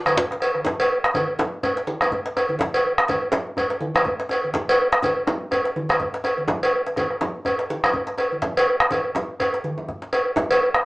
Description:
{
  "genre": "west african traditional, West African drum ensemble",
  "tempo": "124 BPM",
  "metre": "4/4",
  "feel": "swing 57% on 16ths",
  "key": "none",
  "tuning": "none",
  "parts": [
    { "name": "bombo", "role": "percussion", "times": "0.1-10.8 s", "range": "none", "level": "-23 LUFS", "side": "equal", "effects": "none" },
    { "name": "congas", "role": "percussion", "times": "0.1-10.6 s", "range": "none", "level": "-28 LUFS", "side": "right 1 dB", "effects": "none" },
    { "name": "cowbell", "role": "percussion", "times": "0.1-10.6 s", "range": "none", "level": "-22 LUFS", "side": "equal", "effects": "none" },
    { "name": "djembe", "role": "percussion", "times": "0.2-10.8 s", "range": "none", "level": "-29 LUFS", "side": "left 1 dB", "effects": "none" }
  ],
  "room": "wet small room reverb, RT60 0.6 s",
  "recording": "band playing live in one room, small speaker sound",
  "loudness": "-20 LUFS",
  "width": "side -22 dB against mid",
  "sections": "0.7-10.8 A section",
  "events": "none",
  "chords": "none",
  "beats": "0.17 | 0.66 1.15 1.63 2.12 | 2.60 3.09 3.58 4.06 | 4.55 5.03 5.52 6.00 | 6.49 6.97 7.46 7.94 | 8.43 8.91 9.40 9.88 | 10.36"
}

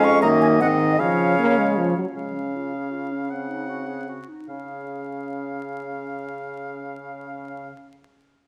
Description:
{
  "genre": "quick classical-period movement for wind quintet",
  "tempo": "143-161 BPM",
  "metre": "3/4",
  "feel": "rubato",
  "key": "Db major",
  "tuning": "A4 = 441 Hz",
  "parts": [
    { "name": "mellow silver concert flute", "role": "melody", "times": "0.0-2.0 s", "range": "Db5 to Db6", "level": "-28 LUFS", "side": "equal", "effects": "none" },
    { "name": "clear oboe", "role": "second line", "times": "0.0-7.7 s", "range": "Eb5 to Gb5", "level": "-32 LUFS", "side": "equal", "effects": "none" },
    { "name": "mellow French horn", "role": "accompaniment", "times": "0.0-7.7 s", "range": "Eb3 to Db4", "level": "-28 LUFS", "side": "equal", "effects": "none" },
    { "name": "warm clarinet", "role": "accompaniment", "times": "0.0-7.7 s", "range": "Ab3 to Ab4", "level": "-32 LUFS", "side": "equal", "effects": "none" },
    { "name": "warm bassoon", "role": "bass", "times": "0.0-7.7 s", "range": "F2 to Db3", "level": "-29 LUFS", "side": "equal", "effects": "none" }
  ],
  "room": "wet recital hall reverb, RT60 1.4 s",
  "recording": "vinyl crackle",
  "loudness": "-23 LUFS",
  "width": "mono",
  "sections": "0.0-2.2 A section; 2.2-4.5 B section; 4.5-6.9 C section",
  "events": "slowing down 1.6-4.5",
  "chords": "0.2 Ebm/Gb; 0.6 Ab; 1.0 Db; 3.3 Ab7/Db; 4.5 Db",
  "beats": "0.23 0.61 | 1.00 1.38 1.77 | 2.17 2.55 2.92 | 3.30 3.69 4.08 | 4.50 4.90 5.31 | 5.72 6.13 6.54"
}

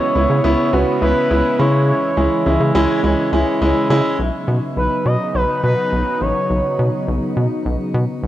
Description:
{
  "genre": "synth-pop",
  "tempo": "104 BPM",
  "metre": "4/4",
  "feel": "straight",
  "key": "unclear",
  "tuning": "A4 = 440 Hz",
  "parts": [
    { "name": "expressive portamento lead", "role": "melody", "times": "0.0-7.1 s", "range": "B4 to D#5", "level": "-21 LUFS", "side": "equal", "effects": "chorus, cassette tape, shimmer reverb" },
    { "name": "clear concert grand piano", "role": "accompaniment", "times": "0.0-4.2 s", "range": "G#3 to F#4", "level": "-18 LUFS", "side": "equal", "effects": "shimmer reverb" },
    { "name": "sweeping resonant pad", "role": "sustained chords", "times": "0.0-8.3 s", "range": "C#3 to E4", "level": "-23 LUFS", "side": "equal", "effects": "chorus, shimmer reverb" },
    { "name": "rubbery square bass", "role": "bass", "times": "0.2-8.3 s", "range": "A1 to C#3", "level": "-18 LUFS", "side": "equal", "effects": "none" }
  ],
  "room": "moderate spring reverb, RT60 2.6 s",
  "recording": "home recording on cassette",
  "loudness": "-15 LUFS",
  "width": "side -13 dB against mid",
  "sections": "0.0-4.2 A section; 4.2-8.3 B section",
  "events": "none",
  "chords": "0.0 C#m7; 1.6 C#m; 4.2 Badd9",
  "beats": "0.15 0.73 1.31 | 1.88 2.46 3.04 3.61 | 4.19 4.77 5.34 5.92 | 6.50 7.08 7.65 8.23"
}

